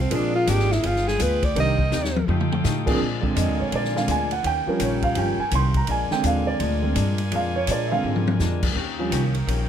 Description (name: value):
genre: jazz, big band swing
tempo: 166 BPM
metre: 4/4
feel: swing 63% on 8ths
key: Bb mixolydian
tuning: A4 = 440 Hz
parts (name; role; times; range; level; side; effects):
- clear alto saxophone; melody; 0.0-2.3 s; C4 to Eb5; -24 LUFS; right 1 dB; none
- clear saxophone section; sustained chords; 0.0-9.7 s; D4 to Ab5; -35 LUFS; left 2 dB; none
- upright bass; bass; 0.0-9.7 s; G1 to Bb2; -24 LUFS; equal; none
- hollow-body jazz guitar; accompaniment; 0.1-9.7 s; Bb2 to Ab4; -31 LUFS; left 6 dB; none
- warm grand piano; accompaniment; 0.1-9.2 s; D3 to C6; -24 LUFS; right 3 dB; none
- swinging big-band drum kit; drums; 0.1-9.6 s; crash cymbal, hi-hat, kick drum, ride cymbal, snare drum, toms; -28 LUFS; left 1 dB; none
room: moderate club reverb, RT60 0.5 s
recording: none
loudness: -20 LUFS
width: side -9 dB against mid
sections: 0.0-3.0 A section; 3.0-9.7 A section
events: alto saxophone solo 0.0-3.0; drum fill 1.9-2.6, 8.0-8.4; grand piano solo 3.0-9.7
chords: 0.1 Bb7; 0.8 G7b9; 1.6 Cm7; 2.3 F9; 3.0 Bb7; 4.4 Eb7; 5.9 Bb7; 8.8 Eb7